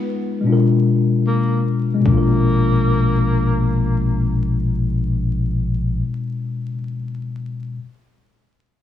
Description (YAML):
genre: lo-fi hip hop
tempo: 75 BPM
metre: 4/4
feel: swing 55% on 16ths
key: unclear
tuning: A4 = 436 Hz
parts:
  - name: tine electric piano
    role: accompaniment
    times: 0.0-7.8 s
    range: Cb3 to Cb5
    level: -18 LUFS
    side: left 3 dB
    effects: medium stereo tremolo, low-pass filter
  - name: warm tenor saxophone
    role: melody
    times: 1.3-4.4 s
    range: Bb3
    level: -26 LUFS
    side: equal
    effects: low-pass filter, tape echo
  - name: soft dub sub bass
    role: bass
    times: 2.1-6.0 s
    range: Bb1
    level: -20 LUFS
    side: left 2 dB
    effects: none
  - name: electronic kick drum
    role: drums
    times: 2.1-2.3 s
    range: none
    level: -22 LUFS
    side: left 2 dB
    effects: overdrive
room: digital ambience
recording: vinyl crackle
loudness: -16 LUFS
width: side -11 dB against mid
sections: 0.0-2.1 A section; 2.1-5.3 B section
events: silent gap 0.5-2.1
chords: 0.5 Bb7b9